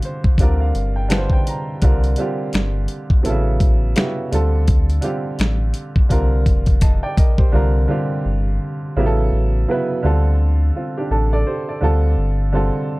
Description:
lo-fi hip hop; 84 BPM; 4/4; swing 58% on 16ths; A4 = 440 Hz
warm upright piano; accompaniment; 0.0-13.0 s; C3 to Bb5; -22 LUFS; right 1 dB; cassette tape, low-pass filter
dusty soul sampler-style drum kit; drums; 0.0-7.5 s; finger snaps, hi-hat, kick drum, snare drum; -16 LUFS; equal
sub bass with octave; bass; 0.4-12.7 s; F1 to D2; -18 LUFS; equal
finger snaps; percussion; 1.1-7.0 s; -36 LUFS; left 7 dB
little or no reverb; dark, warm production; -16 LUFS; side -22 dB against mid
0.0-7.5 A section; 7.5-13.0 B section
upright piano fill 0.0-1.8; drum fill 6.1-7.5
0.4 Gm7; 1.8 Csus2; 3.2 A7; 4.3 Dm7; 6.1 C5; 7.5 Csus2; 9.0 A; 10.0 Dm7; 11.8 G9sus4

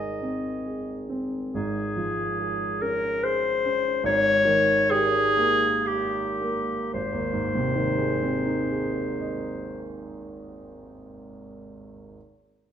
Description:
classical, romantic duo for clarinet and grand piano; 53-73 BPM; 3/4; rubato; Ab major; A4 = 439 Hz
clear clarinet; melody; 0.0-9.9 s; G4 to Eb5; -24 LUFS; left 2 dB
dark concert grand piano; accompaniment; 0.0-12.2 s; Ab1 to Bb5; -28 LUFS; right 3 dB
moderate recital hall reverb, RT60 1.4 s; minimal, uncompressed stereo recording; -22 LUFS; side -9 dB against mid
0.0-1.5 A section; 1.5-6.9 B section; 6.9-9.9 C section
slowing down 0.2-6.9
0.0 Ab; 1.5 Db/Ab; 4.0 Eb7/Ab; 6.9 Ab

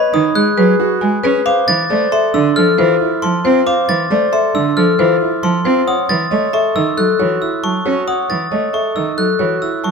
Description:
classical, minimalist pattern music; 136 BPM; 5/4; straight; A4 = 440 Hz
marimba with medium hard mallets; melody; 0.0-9.9 s; G#4 to A5; -17 LUFS; left 9 dB
clear concert grand piano; arpeggios; 0.0-9.9 s; D4 to C#5; -19 LUFS; right 10 dB
glockenspiel with hard plastic mallets; arpeggios; 0.0-9.9 s; B5 to A6; -20 LUFS; equal
rich cello; accompaniment; 0.1-9.9 s; D3 to C#4; -18 LUFS; right 4 dB
moderate scoring stage reverb, RT60 1.5 s; close, detailed microphones; -12 LUFS; side -5 dB against mid
0.0-9.9 A section
0.0 G#m7; 1.5 Fmaj7; 5.9 F#m7

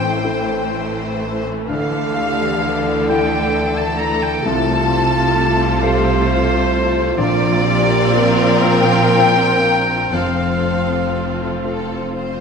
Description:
cinematic; 39-45 BPM (dotted quarters); 6/8; rubato; F major; A4 = 442 Hz
clear studio violin section; melody; 0.0-12.4 s; A4 to C5; -27 LUFS; left 4 dB
clear oboe; second line; 0.0-11.6 s; C5 to Bb5; -24 LUFS; equal
hollow small flute group; second line; 0.0-11.6 s; C5 to Bb5; -25 LUFS; left 2 dB
rich studio violin section; second line; 0.0-11.6 s; C5 to Bb5; -24 LUFS; left 4 dB
dark baby grand piano; accompaniment; 0.0-12.4 s; A1 to Bb4; -25 LUFS; left 2 dB
warm studio viola section; accompaniment; 0.0-12.4 s; E3 to F4; -23 LUFS; right 2 dB
mellow French horn section; sustained chords; 0.0-12.3 s; C4 to C5; -23 LUFS; left 1 dB
concert harp; arpeggios; 0.0-12.4 s; F2 to G5; -26 LUFS; left 9 dB
rich studio cello section; bass; 0.0-12.4 s; F2 to D3; -24 LUFS; right 3 dB
rich studio double bass section; bass; 0.0-12.4 s; F1 to D2; -23 LUFS; right 5 dB
moderate concert hall reverb, RT60 1.9 s; minimal, uncompressed stereo recording; -14 LUFS; side -6 dB against mid
0.0-12.4 A section
0.0 Am7; 1.7 Dmadd9; 4.5 F/C; 7.2 Bbadd9; 10.1 F

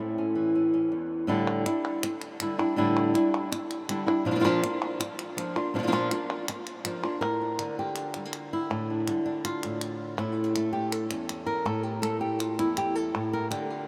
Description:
flamenco; 162 BPM; 4/4; straight; A phrygian dominant; A4 = 440 Hz
flamenco guitar; melody; 0.0-13.9 s; E2 to Bb4; -29 LUFS; equal
palmas hand claps; percussion; 1.5-13.7 s; -39 LUFS; equal
wet huge ambient reverb, RT60 8.3 s; in a vast, echoing space; -29 LUFS; mono
0.0-1.3 A section; 1.3-7.2 B section; 7.2-13.9 C section
0.0 A; 1.3 A7sus4; 4.3 Bb; 7.2 Bb/A; 10.2 A; 13.2 Bb/A

